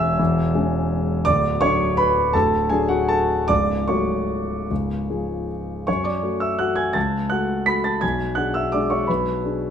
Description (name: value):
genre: classical, piano waltz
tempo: 144-177 BPM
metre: 3/4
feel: rubato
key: F# minor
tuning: A4 = 440 Hz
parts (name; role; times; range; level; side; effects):
- warm concert grand piano; solo; 0.0-9.7 s; C#1 to B6; -19 LUFS; equal; none
room: moderate recital hall reverb, RT60 1.5 s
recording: none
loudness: -19 LUFS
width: side -8 dB against mid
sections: 0.0-5.9 A section; 5.9-9.7 B section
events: none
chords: 0.0 C#m/E; 1.3 D; 3.5 F#m/C#; 4.7 C#; 5.9 F#m; 8.0 G#dim/B